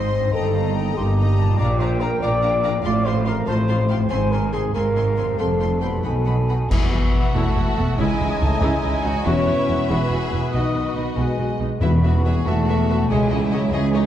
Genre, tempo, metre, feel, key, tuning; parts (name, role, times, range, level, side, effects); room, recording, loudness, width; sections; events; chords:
cinematic, heroic adventure film score; 94 BPM (dotted quarters); 6/8; straight; Bb major, E major from 6.7 s; A4 = 440 Hz
clear symphonic violin section; melody; 0.0-14.0 s; D#5 to C6; -33 LUFS; left 4 dB
clear studio violin section; second line; 0.0-14.1 s; D#4 to Ab5; -34 LUFS; left 2 dB
silver concert flute; second line; 0.0-14.1 s; Eb5 to D#6; -32 LUFS; left 1 dB
rich symphonic viola section; accompaniment; 0.0-14.0 s; B3 to E5; -31 LUFS; equal
warm French horn section; sustained chords; 0.0-14.1 s; E3 to D5; -25 LUFS; left 3 dB
warm trombone section; sustained chords; 0.0-14.1 s; C3 to C#4; -32 LUFS; right 3 dB
concert harp; arpeggios; 0.0-14.1 s; F2 to F5; -31 LUFS; left 6 dB
dark trumpet; stabs; 0.0-14.1 s; D#4 to D5; -30 LUFS; right 1 dB
clear symphonic double bass section; bass; 0.0-14.1 s; E1 to C#2; -24 LUFS; right 2 dB
rich symphonic cello section; bass; 0.0-14.1 s; C#2 to B2; -23 LUFS; right 1 dB
clash cymbals and concert bass drum; percussion; 6.7-7.5 s; -23 LUFS; left 1 dB
timpani; percussion; 11.8-12.4 s; E2; -26 LUFS; left 1 dB
wet scoring stage reverb, RT60 1.5 s; dark, warm production; -18 LUFS; side -11 dB against mid
0.0-6.7 A section; 6.7-14.1 B section
band accent 6.7-7.1
0.3 Eb/G; 1.6 Bb; 2.8 F/A; 4.1 Ab; 5.4 Fadd9; 6.0 B7; 6.7 Esus2; 8.0 C#madd9; 9.3 Esus2; 10.5 B; 11.8 Esus2; 13.1 C#madd9